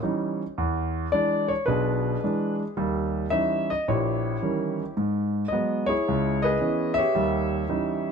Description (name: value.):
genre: solo jazz.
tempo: 109 BPM.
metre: 4/4.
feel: swing 69% on 8ths.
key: unclear.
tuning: A4 = 436 Hz.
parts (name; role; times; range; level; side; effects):
warm grand piano; solo; 0.0-8.1 s; A#1 to E5; -23 LUFS; equal; none.
room: little or no reverb.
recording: close, detailed microphones, faint mains hum.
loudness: -23 LUFS.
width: side -6 dB against mid.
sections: 0.0-8.1 A section.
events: none.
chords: 0.0 D#7b9; 0.6 E7; 2.8 D#7b9; 5.0 G#m7; 6.1 C#m7; 7.1 D#7b9.